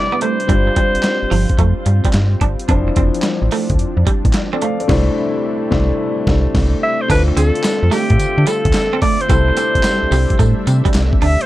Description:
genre	R&B, new jack swing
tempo	109 BPM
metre	4/4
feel	swing 67% on 16ths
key	D minor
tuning	A4 = 439 Hz
part	bright alto saxophone	melody	0.0-1.8, 6.8-11.5 s	G4 to E5	-18 LUFS	equal	tape echo
part	warm concert grand piano	accompaniment	0.0-11.5 s	E3 to F5	-22 LUFS	left 3 dB	none
part	lush unison pad	sustained chords	0.0-11.5 s	C3 to E5	-26 LUFS	equal	chorus
part	clean electric guitar	riff	0.1-11.4 s	F3 to D4	-22 LUFS	right 6 dB	lush chorus
part	dusty soul sampler-style drum kit	drums	0.2-11.5 s	crash cymbal, handclaps, hi-hat, kick drum, snare drum, tambourine	-18 LUFS	equal	overdrive
part	slap-like FM bass	bass	0.5-11.4 s	F1 to D3	-15 LUFS	equal	none
room	little or no reverb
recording	dark, warm production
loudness	-13 LUFS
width	side -15 dB against mid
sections	0.0-7.1 A section; 7.1-11.5 B section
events	band accent 4.9-7.1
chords	0.5 G7sus4; 2.7 Dm9/F; 4.9 C69; 7.1 Dm7; 9.3 C6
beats	| 0.49 1.04 1.59 2.14 | 2.69 3.24 3.79 4.34 | 4.89 5.44 5.99 6.54 | 7.09 7.64 8.20 8.75 | 9.30 9.85 10.40 10.95

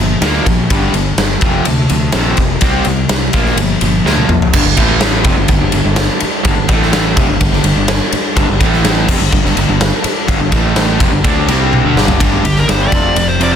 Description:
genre	hard rock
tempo	125 BPM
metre	4/4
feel	straight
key	G dorian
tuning	A4 = 441 Hz
part	cranked stack guitar	riff	0.0-13.6 s	F2 to D4	-18 LUFS	left 10 dB	overdrive
part	overdriven semi-hollow guitar	riff	0.0-13.6 s	F2 to D4	-18 LUFS	right 11 dB	none
part	fuzz fingered electric bass	bass	0.0-13.6 s	F1 to D2	-17 LUFS	equal	overdrive
part	big rock drum kit	drums	0.2-13.5 s	crash cymbal, kick drum, ride cymbal, snare drum, toms	-14 LUFS	equal	soft clipping on snare
part	phased analog pad	sustained chords	4.5-13.6 s	F3 to A4	-27 LUFS	equal	none
part	dark smooth lead guitar	melody	12.5-13.6 s	G4 to D5	-16 LUFS	left 1 dB	overdrive
room	light reverb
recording	dense, heavily limited modern master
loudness	-10 LUFS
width	side -8 dB against mid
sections	0.0-4.5 A section; 4.5-12.2 B section; 12.2-13.6 C section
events	drum fill 4.1-4.5, 11.7-12.2; lead electric guitar solo 12.2-13.6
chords	0.0 Bb; 0.7 G5; 1.4 F5; 2.6 C5; 3.3 Bb; 4.5 G5; 4.8 A5; 5.3 G5; 6.7 A5; 7.2 G5; 8.6 A5; 9.1 G5; 10.5 A5; 11.0 G5; 12.9 Fsus2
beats	0.21 | 0.69 1.18 1.66 2.14 | 2.62 3.10 3.58 4.06 | 4.54 5.02 5.50 5.98 | 6.46 6.94 7.42 7.89 | 8.37 8.85 9.33 9.81 | 10.29 10.76 11.24 11.72 | 12.20 12.68 13.16

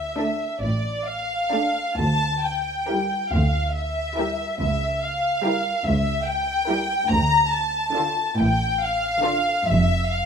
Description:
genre	classical, slow romantic movement for string orchestra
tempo	47 BPM (dotted quarters)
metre	6/8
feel	uneven beats, rubato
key	D minor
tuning	A4 = 440 Hz
part	warm studio violin section	melody	0.0-10.3 s	D5 to Bb5	-23 LUFS	left 1 dB	none
part	warm studio cello section	bass	0.0-10.3 s	C#2 to A2	-26 LUFS	right 1 dB	none
part	warm studio double bass section	bass	0.0-10.3 s	F1 to D2	-26 LUFS	right 1 dB	none
part	warm studio violin section	second line	0.2-9.6 s	D4 to Bb4	-30 LUFS	equal	none
part	warm studio viola section	accompaniment	0.2-9.6 s	D3 to E4	-28 LUFS	right 2 dB	none
room	moderate large studio reverb, RT60 1.2 s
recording	minimal, uncompressed stereo recording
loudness	-20 LUFS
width	side -7 dB against mid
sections	0.0-10.3 A section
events	none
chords	0.0 Dm; 2.0 Em7b5/D; 4.6 C#dim7; 7.1 Dm; 9.7 N.C.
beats	0.62 | 1.98 3.32 | 4.60 5.86 | 7.11 8.39 | 9.69

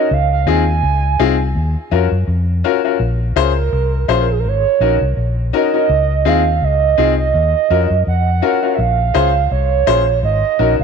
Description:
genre	lovers rock reggae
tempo	83 BPM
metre	4/4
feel	swing 56% on 16ths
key	Bb minor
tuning	A4 = 440 Hz
part	hollow clarinet-like synth lead	melody	0.0-10.8 s	Ab4 to Ab5	-17 LUFS	right 12 dB	chorus, tape echo
part	clear baby grand piano	accompaniment	0.0-10.7 s	C4 to C5	-18 LUFS	left 12 dB	none
part	vintage muted fingered electric bass	bass	0.1-10.8 s	Ab1 to Gb2	-16 LUFS	left 1 dB	none
room	light reverb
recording	1960s-style stereo with parts hard left and right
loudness	-13 LUFS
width	side -6 dB against mid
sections	0.0-10.8 A section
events	none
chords	0.1 Dbmaj7; 1.6 Ebm9; 3.0 Bbm7; 4.4 Ab7sus4; 5.9 Dbmaj7; 7.3 Ebm9; 8.8 Bbm7; 10.2 Ab7sus4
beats	| 0.11 0.83 1.56 2.28 | 3.00 3.73 4.45 5.17 | 5.89 6.62 7.34 8.06 | 8.79 9.51 10.23

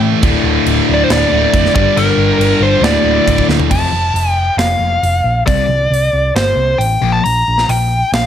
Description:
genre	hard rock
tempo	137 BPM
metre	4/4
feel	straight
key	unclear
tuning	A4 = 440 Hz
part	high-gain distorted guitar	riff	0.0-3.7 s	D2 to A3	-18 LUFS	right 13 dB	distortion
part	overdriven electric guitar	riff	0.0-3.7 s	D2 to A3	-19 LUFS	equal	none
part	sludgy distorted guitar	riff	0.0-7.2 s	D2 to C4	-18 LUFS	left 12 dB	overdrive
part	hollow-body short-scale picked electric bass	bass	0.0-8.3 s	D1 to A2	-17 LUFS	right 1 dB	none
part	tight metal drum kit	drums	0.2-8.2 s	crash cymbal, hi-hat, kick drum, snare drum, toms	-19 LUFS	right 1 dB	none
part	nasal lead guitar with a parked wah	melody	0.9-8.3 s	Bb4 to Bb5	-14 LUFS	left 1 dB	overdrive, slapback echo
room	light reverb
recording	none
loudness	-10 LUFS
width	side -10 dB against mid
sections	0.0-3.7 A section; 3.7-8.3 B section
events	drum fill 3.5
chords	0.2 D5; 1.8 Gm; 2.8 D5; 3.7 F; 5.5 C5; 7.0 Bb5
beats	| 0.23 0.67 1.10 1.54 | 1.97 2.41 2.85 3.28 | 3.72 4.16 4.60 5.04 | 5.48 5.92 6.36 6.80 | 7.24 7.68 8.12

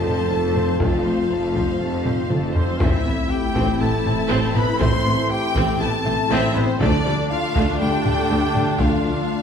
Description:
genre	cinematic, hybrid orchestral and electronic film score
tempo	120 BPM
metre	4/4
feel	straight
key	A minor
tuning	A4 = 440 Hz
part	rich symphonic violin section	melody	0.0-9.4 s	C5 to C6	-30 LUFS	left 4 dB	none
part	warm symphonic violin section	second line	0.0-9.4 s	C5 to C6	-28 LUFS	left 3 dB	none
part	rich symphonic viola section	accompaniment	0.0-9.4 s	G3 to C5	-27 LUFS	equal	none
part	dark French horn section	sustained chords	0.0-9.4 s	C4 to A4	-28 LUFS	left 1 dB	none
part	glassy FM pad	sustained chords	0.2-9.4 s	A3 to C5	-29 LUFS	left 4 dB	ensemble chorus, built-in reverb, phaser
part	mellow tuba	bass	0.0-9.1 s	F1 to D2	-29 LUFS	right 1 dB	none
part	rich symphonic cello section	bass	0.0-9.1 s	D2 to A2	-30 LUFS	right 2 dB	none
part	rich symphonic double bass section	bass	0.0-9.1 s	F1 to D2	-28 LUFS	right 2 dB	none
part	tight sequenced synth	arpeggios	0.1-9.2 s	D3 to E4	-31 LUFS	equal	none
part	taiko ensemble	drums	0.1-9.3 s	none	-24 LUFS	equal	none
part	warm trombone section	sustained chords	0.8-9.4 s	C3 to A3	-30 LUFS	right 3 dB	none
part	mellow duduk	melody	2.6-9.4 s	C4 to C5	-28 LUFS	equal	digital delay
part	sub drop	sound effects	2.8-4.8 s	none	-29 LUFS	left 1 dB	none
room	wet recital hall reverb, RT60 1.3 s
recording	heard from further back in the room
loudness	-18 LUFS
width	side -7 dB against mid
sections	0.0-2.8 A section; 2.8-9.4 B section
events	drum fill 2.1-2.8; impact 2.8-4.8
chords	0.0 F; 2.8 Am; 6.8 Dm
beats	0.30 | 0.80 1.30 1.80 2.30 | 2.80 3.30 3.80 4.30 | 4.80 5.30 5.80 6.30 | 6.80 7.30 7.80 8.30 | 8.80 9.30

